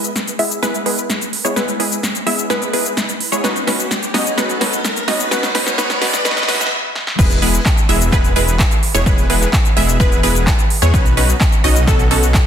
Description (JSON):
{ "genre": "EDM, festival progressive house", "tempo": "128 BPM", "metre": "4/4", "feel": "straight", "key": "E major", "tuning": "A4 = 440 Hz", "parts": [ { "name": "wide unison pluck", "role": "arpeggios", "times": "0.0-12.4 s", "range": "A4 to E5", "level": "-23 LUFS", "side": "right 1 dB", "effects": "sidechain pumping, dub echo" }, { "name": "supersaw stab", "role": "riff", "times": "0.0-12.4 s", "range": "G#3 to E5", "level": "-20 LUFS", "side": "equal", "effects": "vintage 12-bit sampler grit, sidechain pumping, low-pass filter, dub echo" }, { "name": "big-room dance drum kit", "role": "drums", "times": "0.0-12.4 s", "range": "crash cymbal, handclaps, hi-hat, shaker, snare drum", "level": "-19 LUFS", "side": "equal", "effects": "overdrive" }, { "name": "riser", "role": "sound effects", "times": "0.0-6.7 s", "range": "none", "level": "-26 LUFS", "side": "equal", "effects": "none" }, { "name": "detuned saw bass", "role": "bass", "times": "7.2-12.4 s", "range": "E1 to E2", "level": "-16 LUFS", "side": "equal", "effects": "tube saturation, sidechain pumping" }, { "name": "electronic kick drum", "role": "drums", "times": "7.2-12.4 s", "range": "none", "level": "-15 LUFS", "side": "equal", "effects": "overdrive" } ], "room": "light reverb", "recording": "dense, heavily limited modern master, high-pass filter", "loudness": "-13 LUFS", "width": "side -9 dB against mid", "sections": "0.0-7.2 A section; 7.2-12.5 B section", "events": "build-up 0.0-7.2; drum fill 0.0-6.7, 7.0; riser 0.0-6.7; filter sweep on supersaw synth 0.0-7.2; filter sweep on synth pluck 0.0-7.2; stop 6.7-7.2; drop 7.2-12.5", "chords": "0.0 E; 3.4 Badd9; 7.2 E; 10.9 Badd9" }